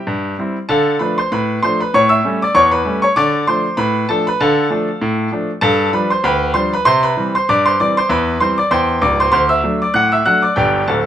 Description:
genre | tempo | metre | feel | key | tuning
ragtime piano | 97 BPM | 2/4 | swing 55% on 16ths | unclear | A4 = 440 Hz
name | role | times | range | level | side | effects
bright concert grand piano | solo | 0.0-11.1 s | Db1 to F#6 | -13 LUFS | equal | none
room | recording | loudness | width
moderate studio reverb, RT60 0.8 s | minimal, uncompressed stereo recording | -13 LUFS | side -10 dB against mid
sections
0.0-11.1 A section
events
none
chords
0.0 C; 0.7 Dm; 1.9 A7; 3.2 Dm; 5.6 G7; 6.9 C; 8.1 C/E; 9.3 D7

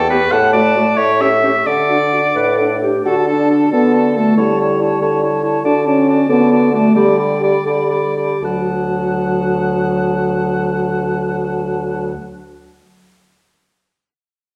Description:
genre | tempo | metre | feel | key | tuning
quick classical-period movement for wind quintet | 75-95 BPM (dotted quarters) | 6/8 | rubato | D major | A4 = 440 Hz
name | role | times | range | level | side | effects
hollow concert flute | melody | 0.0-12.1 s | E5 to B5 | -26 LUFS | equal | none
bright oboe | second line | 0.0-12.1 s | A4 to F#5 | -22 LUFS | equal | none
mellow bassoon | bass | 0.0-12.1 s | D2 to D3 | -21 LUFS | equal | none
mellow clarinet | accompaniment | 0.1-12.1 s | E4 to B4 | -26 LUFS | equal | none
warm French horn | accompaniment | 0.1-12.1 s | F#3 to F#4 | -20 LUFS | equal | none
room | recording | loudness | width
wet recital hall reverb, RT60 1.5 s | heard from further back in the room | -15 LUFS | mono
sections
0.0-3.1 A section; 3.1-8.4 B section; 8.4-11.4 C section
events
slowing down 5.0-8.4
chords
0.3 D/A; 1.0 A7; 1.7 D; 4.4 A7/D; 5.7 D; 7.0 G/D; 8.4 D

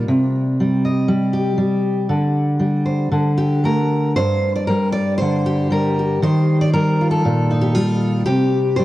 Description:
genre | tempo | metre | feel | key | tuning
folk, solo fingerstyle acoustic guitar | 118 BPM | 4/4 | straight | G minor | A4 = 439 Hz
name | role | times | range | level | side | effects
fingerpicked steel-string acoustic guitar | solo | 0.0-8.8 s | G2 to Eb5 | -16 LUFS | equal | cassette tape
room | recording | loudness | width
moderate lush hall reverb, RT60 2.8 s | home recording on cassette | -16 LUFS | side -15 dB against mid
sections
0.0-4.2 A section; 4.2-8.8 B section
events
none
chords
0.1 Cm; 2.1 G5/D; 3.1 D5; 4.2 Gm; 6.2 Ebadd9; 8.3 C5

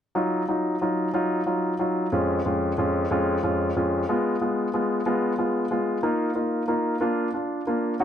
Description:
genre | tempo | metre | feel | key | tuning
pop | 61 BPM (dotted quarters) | 6/8 | straight | Eb minor | A4 = 441 Hz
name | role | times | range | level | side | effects
warm concert grand piano | accompaniment | 0.2-8.0 s | F2 to Gb4 | -22 LUFS | equal | none
room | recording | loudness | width
moderate echo chamber reverb, RT60 1.3 s | none | -22 LUFS | side -9 dB against mid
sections
0.2-8.0 A section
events
none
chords
0.2 Ebmadd9; 2.1 Db/F; 4.1 Fdim; 6.0 Bbsus4; 7.0 Bb

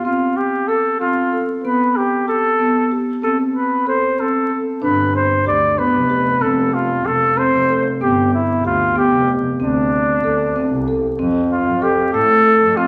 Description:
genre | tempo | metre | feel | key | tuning
contemporary instrumental, chamber music in an uneven meter | 189 BPM (eighths) | 5/8 | straight | unclear | A4 = 442 Hz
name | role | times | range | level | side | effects
clear flugelhorn | melody | 0.0-12.9 s | D4 to D5 | -19 LUFS | equal | none
marimba with soft mallets | arpeggios | 0.1-12.9 s | A3 to A4 | -21 LUFS | equal | none
muted double bass | bass | 4.8-12.9 s | F1 to A2 | -26 LUFS | equal | none
room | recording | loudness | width
moderate recital hall reverb, RT60 1.6 s | vinyl crackle | -17 LUFS | mono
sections
0.0-11.2 A section; 11.2-12.9 B section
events
none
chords
0.1 Fadd9/C; 1.6 G; 3.2 Am/C; 4.8 G7; 6.4 F; 8.0 G7; 9.6 D5; 11.2 F

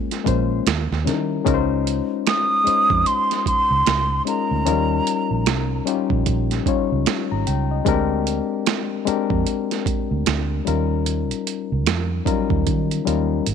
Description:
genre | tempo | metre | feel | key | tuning
R&B, neo-soul | 75 BPM | 4/4 | swing 61% on 16ths | unclear | A4 = 435 Hz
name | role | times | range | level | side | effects
reed electric piano | accompaniment | 0.0-13.5 s | F3 to Bb5 | -22 LUFS | left 11 dB | spring reverb
boom bap sampler-style drum kit | drums | 0.1-13.5 s | finger snaps, hi-hat, kick drum, snare drum | -24 LUFS | right 7 dB | none
vintage muted fingered electric bass | bass | 0.3-13.5 s | Ab1 to Eb3 | -23 LUFS | right 2 dB | none
breathy mellow silver concert flute | melody | 2.3-5.8 s | Bb5 to Eb6 | -19 LUFS | right 1 dB | none
room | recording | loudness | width
light reverb | 1960s-style stereo with parts hard left and right | -18 LUFS | side -7 dB against mid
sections
0.0-1.5 A section; 1.5-13.5 B section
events
drum fill 12.7-13.5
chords
0.0 Bbm7; 0.7 Eb7b9; 1.5 Dbmaj9; 4.7 Eb9; 7.9 Bb13/D; 10.7 Eb9

